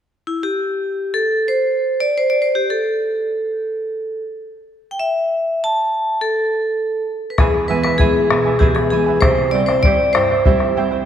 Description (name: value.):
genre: andean folk, Andean ensemble.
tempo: free time.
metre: none.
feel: none.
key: unclear.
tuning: A4 = 440 Hz.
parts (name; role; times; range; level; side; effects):
vibraphone with hard mallets; melody; 0.3-10.8 s; E4 to A5; -17 LUFS; left 1 dB; none.
charango; accompaniment; 7.4-11.1 s; E4 to G#5; -23 LUFS; right 4 dB; none.
nylon-string guitar; accompaniment; 7.4-11.0 s; E2 to E4; -21 LUFS; right 4 dB; none.
bombo; percussion; 7.4-10.8 s; none; -18 LUFS; left 1 dB; none.
room: wet concert hall reverb, RT60 2.6 s.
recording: none.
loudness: -15 LUFS.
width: side -9 dB against mid.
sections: 0.0-7.4 A section; 7.4-11.1 B section.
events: none.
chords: 0.0 N.C.; 7.4 E; 9.2 C.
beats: free time.